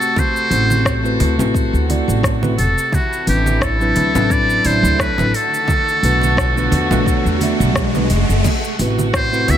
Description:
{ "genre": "sunset chillout", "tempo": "87 BPM", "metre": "4/4", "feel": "swing 55% on 16ths", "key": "A dorian", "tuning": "A4 = 440 Hz", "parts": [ { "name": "trumpet with metal mute", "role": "melody", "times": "0.0-9.6 s", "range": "F#4 to E5", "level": "-19 LUFS", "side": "equal", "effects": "digital delay" }, { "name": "dark chamber string section", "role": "sustained chords", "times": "0.0-9.6 s", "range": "C3 to A4", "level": "-24 LUFS", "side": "equal", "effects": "none" }, { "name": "deep house drum kit", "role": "drums", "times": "0.0-9.6 s", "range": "crash cymbal, hi-hat, rim click, shaker", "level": "-25 LUFS", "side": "left 1 dB", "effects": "studio reverb" }, { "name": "electronic kick drum", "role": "drums", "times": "0.2-9.3 s", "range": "none", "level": "-21 LUFS", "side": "equal", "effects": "studio reverb" }, { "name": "congas", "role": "percussion", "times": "0.2-9.6 s", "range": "none", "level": "-23 LUFS", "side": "right 3 dB", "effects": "none" }, { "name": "mellow tine electric piano", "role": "accompaniment", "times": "0.5-9.6 s", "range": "E3 to E5", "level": "-22 LUFS", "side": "moving between left 2 dB and right 5 dB", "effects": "auto-pan, digital delay" }, { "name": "upright bass", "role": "bass", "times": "0.5-9.6 s", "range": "E1 to E2", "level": "-18 LUFS", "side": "equal", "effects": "none" }, { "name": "riser", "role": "sound effects", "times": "4.9-8.4 s", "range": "none", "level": "-25 LUFS", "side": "equal", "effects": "none" } ], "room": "light reverb", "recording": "none", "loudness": "-14 LUFS", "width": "side -10 dB against mid", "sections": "0.0-8.4 A section; 8.4-9.6 B section", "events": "riser 4.9-8.4", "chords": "0.0 Am69; 2.9 D13/A; 5.3 Bm7; 8.4 Am69" }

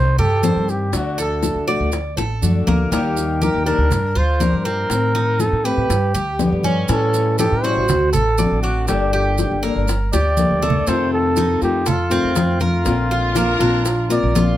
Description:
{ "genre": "latin, Cuban son and guajira", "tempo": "121 BPM", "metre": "4/4", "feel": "straight", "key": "G minor", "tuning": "A4 = 441 Hz", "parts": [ { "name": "trumpet with bucket mute", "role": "melody", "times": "0.0-14.6 s", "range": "F4 to D5", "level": "-21 LUFS", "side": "right 1 dB", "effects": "none" }, { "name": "Cuban tres", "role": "arpeggios", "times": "0.0-14.6 s", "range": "A3 to D5", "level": "-25 LUFS", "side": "right 3 dB", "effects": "none" }, { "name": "upright bass", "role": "bass", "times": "0.0-14.6 s", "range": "G1 to A2", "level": "-21 LUFS", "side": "right 1 dB", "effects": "none" }, { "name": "congas", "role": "percussion", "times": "0.2-14.6 s", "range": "none", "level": "-23 LUFS", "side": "left 1 dB", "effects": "none" }, { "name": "fingerpicked swing-style acoustic guitar", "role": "accompaniment", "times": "0.4-14.6 s", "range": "C3 to A4", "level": "-23 LUFS", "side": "left 5 dB", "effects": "none" }, { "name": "bongos", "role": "percussion", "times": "0.4-14.6 s", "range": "none", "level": "-28 LUFS", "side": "left 6 dB", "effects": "none" }, { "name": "maracas", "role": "percussion", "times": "0.4-14.6 s", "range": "none", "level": "-31 LUFS", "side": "right 6 dB", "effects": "none" }, { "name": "warm studio violin section", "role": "second line", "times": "13.1-14.0 s", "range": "F4 to Bb4", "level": "-27 LUFS", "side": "equal", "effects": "none" } ], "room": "light reverb", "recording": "close, detailed microphones", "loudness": "-16 LUFS", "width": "side -13 dB against mid", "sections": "0.0-10.9 A section; 10.9-14.6 B section", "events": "drum fill 2.2-2.9, 10.1-10.9", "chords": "0.0 Cm; 0.9 D; 2.9 Eb; 3.9 Gm7; 4.9 Adim; 5.9 G; 6.9 A7; 7.9 D7; 8.9 Gmadd9; 10.9 F7; 12.9 Bbadd9" }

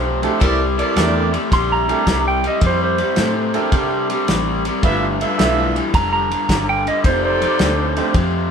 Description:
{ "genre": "electric blues shuffle", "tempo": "109 BPM", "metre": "4/4", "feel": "swing 67% on 8ths", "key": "C mixolydian", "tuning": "A4 = 440 Hz", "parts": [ { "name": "clean lap steel guitar", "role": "second line", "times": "0.0-8.5 s", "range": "C5 to C6", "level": "-21 LUFS", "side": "right 4 dB", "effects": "none" }, { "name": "raw garage guitar", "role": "riff", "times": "0.0-8.5 s", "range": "F2 to A3", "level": "-20 LUFS", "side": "left 3 dB", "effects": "overdrive" }, { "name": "vintage muted fingered electric bass", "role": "bass", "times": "0.0-8.5 s", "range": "F1 to C3", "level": "-23 LUFS", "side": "equal", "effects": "none" }, { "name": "clear baby grand piano", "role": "accompaniment", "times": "0.2-8.1 s", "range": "A3 to C5", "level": "-23 LUFS", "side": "right 6 dB", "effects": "none" }, { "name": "warm soul drum kit", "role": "drums", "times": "0.2-8.3 s", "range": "kick drum, ride cymbal, snare drum", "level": "-22 LUFS", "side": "equal", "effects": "none" }, { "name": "mellow horn section", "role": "stabs", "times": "0.4-1.4, 4.8-8.0 s", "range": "Eb4 to E5", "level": "-21 LUFS", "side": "right 1 dB", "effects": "none" } ], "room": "moderate studio reverb, RT60 0.6 s", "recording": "band playing live in one room", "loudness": "-15 LUFS", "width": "side -7 dB against mid", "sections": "0.0-8.5 A section", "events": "electric slide guitar solo 0.0-8.5", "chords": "0.4 C13; 4.8 G13; 7.0 F13" }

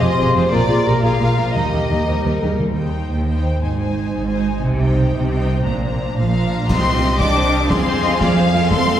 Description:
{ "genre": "cinematic, heroic adventure film score", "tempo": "118 BPM (dotted quarters)", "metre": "6/8", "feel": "straight", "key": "Eb major", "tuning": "A4 = 438 Hz", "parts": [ { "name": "warm symphonic violin section", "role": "melody", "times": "0.0-9.0 s", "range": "C5 to D6", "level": "-23 LUFS", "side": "left 3 dB", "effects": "none" }, { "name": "bright clarinet", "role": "second line", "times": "0.0-2.4 s", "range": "F4 to Bb4", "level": "-27 LUFS", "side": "left 1 dB", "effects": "none" }, { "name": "mellow large flute ensemble", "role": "second line", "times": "0.0-2.4 s", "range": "Bb5 to C6", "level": "-24 LUFS", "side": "left 1 dB", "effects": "none" }, { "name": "warm symphonic violin section", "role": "second line", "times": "0.0-9.0 s", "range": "Eb4 to F5", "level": "-25 LUFS", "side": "left 2 dB", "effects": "none" }, { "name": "warm symphonic viola section", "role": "accompaniment", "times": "0.0-9.0 s", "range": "F3 to Eb5", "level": "-26 LUFS", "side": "right 1 dB", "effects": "none" }, { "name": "dark French horn section", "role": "sustained chords", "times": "0.0-2.6 s", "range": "F4 to C5", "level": "-25 LUFS", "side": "equal", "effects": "none" }, { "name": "warm studio cello section", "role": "bass", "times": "0.0-9.0 s", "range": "Eb2 to D4", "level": "-21 LUFS", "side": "right 2 dB", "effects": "none" }, { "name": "warm symphonic double bass section", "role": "bass", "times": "0.0-9.0 s", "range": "F1 to F2", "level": "-21 LUFS", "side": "right 1 dB", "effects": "none" }, { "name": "timpani", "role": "percussion", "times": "2.6-3.1 s", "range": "Eb3", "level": "-27 LUFS", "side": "left 1 dB", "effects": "none" }, { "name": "concert snare drum, clash cymbals and concert bass drum", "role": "drums", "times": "6.7-9.0 s", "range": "none", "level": "-21 LUFS", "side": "equal", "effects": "none" } ], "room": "wet scoring stage reverb, RT60 1.9 s", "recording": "heard from further back in the room", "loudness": "-15 LUFS", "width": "side -10 dB against mid", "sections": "0.0-2.6 A section; 2.6-6.7 B section; 6.7-9.0 C section", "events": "none", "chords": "0.0 Fm; 0.5 Bb; 1.6 Eb; 2.6 Eb6; 3.6 Ab; 4.6 Cm; 5.7 Bbadd9; 6.7 Cm; 7.7 Fm" }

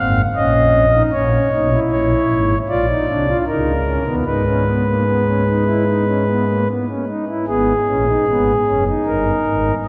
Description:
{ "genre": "classical, baroque-style 3-part fugue for pipe organ", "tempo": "76 BPM", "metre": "4/4", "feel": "straight", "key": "G# minor", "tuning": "A4 = 440 Hz", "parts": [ { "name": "pipe organ, principal", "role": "solo", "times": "0.0-9.9 s", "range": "F#1 to F5", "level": "-17 LUFS", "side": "equal", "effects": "none" } ], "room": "wet cathedral reverb, RT60 4.8 s", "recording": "none", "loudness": "-17 LUFS", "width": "mono", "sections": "0.0-7.5 A section; 7.5-9.9 B section", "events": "none", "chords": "0.0 Eb5; 1.1 A#m7b5; 2.7 A#; 3.5 D#5/C#; 4.3 G#m; 9.1 D#/G" }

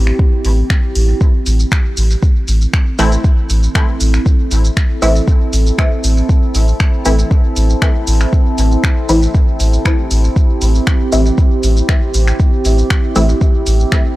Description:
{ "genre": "dub techno", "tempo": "118 BPM", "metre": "4/4", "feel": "straight", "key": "A minor", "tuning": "A4 = 436 Hz", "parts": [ { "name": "deep dark ambient pad", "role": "sustained chords", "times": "0.0-14.2 s", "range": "C4 to A4", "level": "-20 LUFS", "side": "right 2 dB", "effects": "chorus, built-in reverb, sidechain pumping" }, { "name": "soft dub sub bass", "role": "bass", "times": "0.0-13.8 s", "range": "A1", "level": "-12 LUFS", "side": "equal", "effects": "sidechain pumping" }, { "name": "deep house drum kit", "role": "drums", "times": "0.1-14.0 s", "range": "finger snaps, hi-hat, shaker", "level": "-22 LUFS", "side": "equal", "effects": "none" }, { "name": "electronic kick drum", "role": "drums", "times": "0.2-14.0 s", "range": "none", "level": "-12 LUFS", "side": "equal", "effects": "none" }, { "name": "filtered dub chord stab", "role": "stabs", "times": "3.0-13.4 s", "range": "E3 to E4", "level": "-20 LUFS", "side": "equal", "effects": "chorus, phaser, sidechain pumping, dub echo" } ], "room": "digital ambience", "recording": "dry, gritty hardware recording", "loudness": "-11 LUFS", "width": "side -17 dB against mid", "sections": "0.0-1.2 A section; 1.2-14.2 A section", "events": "filter sweep on synth stab 1.2-14.2", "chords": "0.0 Am" }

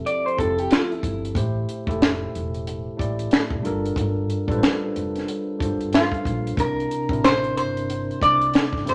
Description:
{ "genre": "R&B, neo-soul", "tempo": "92 BPM", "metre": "4/4", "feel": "swing 62% on 16ths", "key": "unclear", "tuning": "A4 = 442 Hz", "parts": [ { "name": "tine electric piano", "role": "accompaniment", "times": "0.0-8.9 s", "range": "A2 to E5", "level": "-29 LUFS", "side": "equal", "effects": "none" }, { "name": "electric guitar through a small old amp", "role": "second line", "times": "0.1-1.3 s", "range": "E4 to D5", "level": "-26 LUFS", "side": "equal", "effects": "none" }, { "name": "compact cocktail drum kit", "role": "drums", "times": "0.1-8.9 s", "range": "finger snaps, hi-hat, kick drum, snare drum", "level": "-24 LUFS", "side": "equal", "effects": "none" }, { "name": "upright bass", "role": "bass", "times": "0.4-8.9 s", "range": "E1 to C2", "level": "-32 LUFS", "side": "equal", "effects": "none" }, { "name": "lap resonator guitar", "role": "melody", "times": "5.9-8.9 s", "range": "F4 to D5", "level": "-24 LUFS", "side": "equal", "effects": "none" } ], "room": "moderate studio reverb, RT60 0.8 s", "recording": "none", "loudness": "-23 LUFS", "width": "mono", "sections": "0.0-8.9 A section", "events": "none", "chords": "0.0 Fmaj9; 1.4 Am7; 3.6 Gm9; 6.6 C9" }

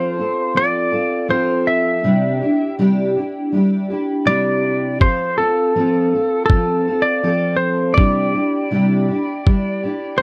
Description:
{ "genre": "acoustic pop", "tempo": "81 BPM", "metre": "4/4", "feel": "straight", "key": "F major", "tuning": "A4 = 439 Hz", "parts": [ { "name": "clean lap steel guitar", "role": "melody", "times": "0.0-10.2 s", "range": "A4 to E5", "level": "-21 LUFS", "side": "equal", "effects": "none" }, { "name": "fingerpicked steel-string acoustic guitar", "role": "accompaniment", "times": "0.0-10.2 s", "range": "C3 to A4", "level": "-21 LUFS", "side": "equal", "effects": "double-tracked" }, { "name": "electronic kick drum", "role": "drums", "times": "5.0-9.6 s", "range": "none", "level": "-16 LUFS", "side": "equal", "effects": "none" } ], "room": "little or no reverb", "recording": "dry, close 1970s-style studio recording", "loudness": "-18 LUFS", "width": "mono", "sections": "0.0-10.2 A section", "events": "none", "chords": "0.0 F; 2.0 Cadd9; 5.0 F; 8.0 Cadd9" }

